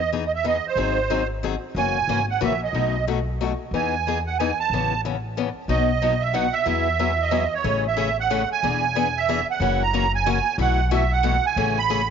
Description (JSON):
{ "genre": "acoustic string swing (jazz manouche)", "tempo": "183 BPM", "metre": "3/4", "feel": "swing 61% on 8ths", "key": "E major", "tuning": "A4 = 441 Hz", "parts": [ { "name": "musette accordion", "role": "melody", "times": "0.0-12.1 s", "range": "C5 to B5", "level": "-23 LUFS", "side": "right 8 dB", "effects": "none" }, { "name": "upright bass", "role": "bass", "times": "0.0-12.1 s", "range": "E1 to E2", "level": "-27 LUFS", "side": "equal", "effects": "none" }, { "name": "picked old ladder-braced acoustic guitar", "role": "accompaniment", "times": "0.1-12.0 s", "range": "B2 to G#4", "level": "-25 LUFS", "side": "left 10 dB", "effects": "none" } ], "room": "moderate plate reverb, RT60 3.7 s", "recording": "1960s-style stereo with parts hard left and right, nothing above 7.5 kHz", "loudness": "-20 LUFS", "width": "side -7 dB against mid", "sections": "0.0-7.7 A section; 7.7-12.1 B section", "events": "none", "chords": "0.0 Emaj7; 0.8 G#7; 1.8 F#7; 2.7 B7; 3.7 Emaj7; 4.7 Aadd9; 5.7 B; 6.7 Eadd9; 7.7 Amaj7; 8.6 E7; 9.6 F#7; 10.6 B7sus4; 11.6 Amaj7", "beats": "0.12 0.45 | 0.78 1.10 1.43 | 1.76 2.09 2.41 | 2.74 3.07 3.40 | 3.72 4.05 4.38 | 4.71 5.03 5.36 | 5.69 6.02 6.34 | 6.67 7.00 7.33 | 7.65 7.98 8.31 | 8.63 8.96 9.29 | 9.61 9.94 10.27 | 10.59 10.92 11.24 | 11.57 11.90" }